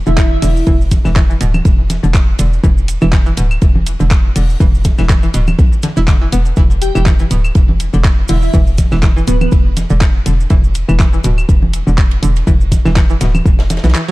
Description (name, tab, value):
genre	minimal techno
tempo	122 BPM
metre	4/4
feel	swing 55% on 16ths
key	unclear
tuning	A4 = 439 Hz
part	hollow knocking FM bass	bass	0.0-13.9 s	D1 to B1	-14 LUFS	equal	sidechain pumping
part	airy dreamy lead	melody	0.1-0.8, 6.8-9.5 s	B3 to G4	-19 LUFS	equal	chorus, digital delay
part	string-like resonator pluck	riff	0.1-14.1 s	B2 to E4	-21 LUFS	equal	chorus, sidechain pumping, ping-pong delay
part	modern studio drum kit	drums	0.1-14.1 s	hi-hat, ride cymbal, snare drum	-32 LUFS	equal	sidechain pumping on cymbals, high-pass filter on cymbals, sidechain pumping on hats, high-pass filter on hats, high-pass filter on snare, high-pass filter on room
part	maracas	percussion	0.1-14.1 s	none	-32 LUFS	right 5 dB	none
part	electronic kick drum	drums	0.2-13.6 s	none	-11 LUFS	equal	overdrive
part	garage drum kit	drums	0.2-14.1 s	handclaps, hi-hat	-23 LUFS	equal	none
part	congas and claves	percussion	0.9-13.8 s	none	-21 LUFS	right 1 dB	overdrive, digital delay
room	little or no reverb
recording	dark, warm production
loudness	-10 LUFS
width	side -19 dB against mid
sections	0.0-14.1 A section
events	break 13.9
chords	0.0 E5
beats	0.18 | 0.67 1.16 1.65 2.15 | 2.64 3.13 3.62 4.11 | 4.60 5.10 5.59 6.08 | 6.57 7.06 7.55 8.05 | 8.54 9.03 9.52 10.01 | 10.51 11.00 11.49 11.98 | 12.47 12.96 13.46 13.95